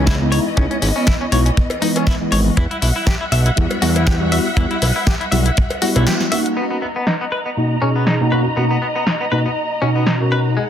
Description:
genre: nu-disco, nu disco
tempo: 120 BPM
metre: 4/4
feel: swing 55% on 16ths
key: B major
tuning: A4 = 440 Hz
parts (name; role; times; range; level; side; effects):
- tine electric piano; accompaniment; 0.0-10.6 s; B2 to D#5; -20 LUFS; equal; ensemble chorus, low-pass filter, dub echo
- dark symphonic string section; sustained chords; 0.0-10.7 s; E3 to A#5; -24 LUFS; equal; sidechain pumping, low-pass filter
- direct-recorded clean electric guitar; riff; 0.0-10.6 s; G#3 to E5; -24 LUFS; left 2 dB; lush chorus, low-pass filter, dub echo
- fat analog bass; bass; 0.0-6.1 s; G#1 to E2; -17 LUFS; equal; none
- house drum kit; drums; 0.1-10.2 s; crash cymbal, hi-hat, snare drum; -22 LUFS; left 1 dB; low-pass filter on hats, low-pass filter on snare, low-pass filter on cymbals
- kick drum; drums; 0.1-5.7 s; none; -17 LUFS; equal; none
- cowbell; percussion; 1.7-6.0 s; none; -28 LUFS; left 2 dB; none
room: light reverb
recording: dense, heavily limited modern master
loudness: -15 LUFS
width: side -9 dB against mid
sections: 0.0-6.6 A section; 6.6-10.7 B section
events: band accent 6.1; filter sweep on tine electric piano 6.6-10.7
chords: 0.0 C#m9; 2.6 Emadd9; 6.6 Bmaj7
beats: 0.07 | 0.57 1.07 1.57 2.07 | 2.57 3.07 3.57 4.07 | 4.57 5.07 5.57 6.07 | 6.57 7.07 7.57 8.07 | 8.57 9.07 9.57 10.07 | 10.57

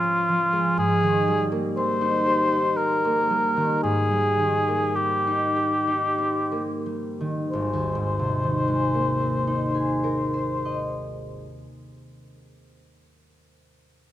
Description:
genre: classical, impressionist duo for cor anglais and harp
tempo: 43-61 BPM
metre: 3/4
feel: rubato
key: Ab major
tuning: A4 = 436 Hz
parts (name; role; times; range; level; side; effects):
- mellow cor anglais; melody; 0.0-11.1 s; F4 to C5; -23 LUFS; left 1 dB; none
- concert harp; accompaniment; 0.0-12.9 s; Ab1 to Eb5; -25 LUFS; right 1 dB; none
room: light reverb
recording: close, detailed microphones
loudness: -21 LUFS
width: side -12 dB against mid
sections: 0.0-7.5 A section; 7.5-11.4 B section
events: slowing down 0.0-7.5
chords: 0.0 Bbm9/Ab (rootless); 0.8 Abmaj9; 7.5 Abadd9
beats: | 0.78 1.76 2.77 | 3.83 4.96 6.19 | 7.53 8.83 10.13

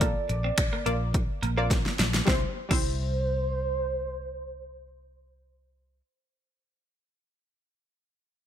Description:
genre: dance-pop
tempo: 106 BPM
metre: 4/4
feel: straight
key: C mixolydian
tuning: A4 = 440 Hz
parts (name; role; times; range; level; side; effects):
- warm velvety synth lead; melody; 0.0-5.3 s; C5 to D5; -33 LUFS; right 1 dB; chorus, ping-pong delay
- punchy chord stab; accompaniment; 0.0-6.0 s; G3 to D5; -33 LUFS; left 1 dB; chorus, sidechain pumping
- twelve-string electric guitar; riff; 0.0-2.8 s; Bb3 to D4; -36 LUFS; right 4 dB; lush chorus
- vintage muted fingered electric bass; bass; 0.0-6.0 s; Bb1 to C2; -30 LUFS; equal; sidechain pumping
- deep house drum kit; drums; 0.0-2.9 s; crash cymbal, finger snaps, hi-hat, kick drum, snare drum; -26 LUFS; equal; overdrive, gated reverb
room: light reverb, digital ambience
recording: bright 1980s-style digital production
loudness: -25 LUFS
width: side -10 dB against mid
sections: 0.0-2.3 A section; 2.3-4.5 B section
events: drum fill 1.7-2.3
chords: 0.0 Bb; 2.3 C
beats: | 0.01 0.58 1.14 1.71 | 2.27 2.84 3.41 3.97

